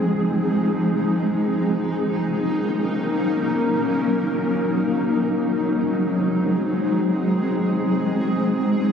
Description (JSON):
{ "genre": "hip hop", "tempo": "free time", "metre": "none", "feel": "none", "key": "Eb dorian", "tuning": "A4 = 439 Hz", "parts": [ { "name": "granular cloud pad", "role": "solo", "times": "0.0-8.9 s", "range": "F3 to Bb4", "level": "-19 LUFS", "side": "equal", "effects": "built-in reverb, tape echo" } ], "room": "moderate huge ambient reverb, RT60 7.8 s", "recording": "recorded on a phone in the room, club reverb", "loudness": "-19 LUFS", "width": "side -7 dB against mid", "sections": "0.0-8.9 A section", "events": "none", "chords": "0.0 Fm7; 1.8 Ebm7; 5.1 Ab7; 8.3 Dbmaj7" }